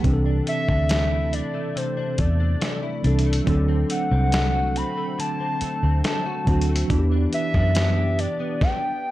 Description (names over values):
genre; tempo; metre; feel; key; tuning
contemporary R&B; 70 BPM; 4/4; straight; unclear; A4 = 439 Hz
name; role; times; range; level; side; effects
mellow tine electric piano; accompaniment; 0.0-8.6 s; E3 to A4; -27 LUFS; right 3 dB; medium stereo tremolo
direct-recorded clean electric guitar; arpeggios; 0.0-9.1 s; C3 to A4; -31 LUFS; left 6 dB; analog chorus, tape echo
vintage muted fingered electric bass; bass; 0.0-8.3 s; C2 to F#2; -21 LUFS; equal; none
dusty soul sampler-style drum kit; drums; 0.0-8.8 s; hi-hat, kick drum, rim click, snare drum; -26 LUFS; equal; none
hollow clarinet-like synth lead; melody; 0.5-9.1 s; C5 to B5; -27 LUFS; equal; chorus
room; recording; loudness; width
digital ambience; dark, warm production; -20 LUFS; side -15 dB against mid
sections
0.0-9.1 A section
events
none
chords
0.0 C69; 3.5 D7; 6.9 Em7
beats
| 0.04 0.90 1.76 2.61 | 3.47 4.33 5.18 6.04 | 6.90 7.76 8.61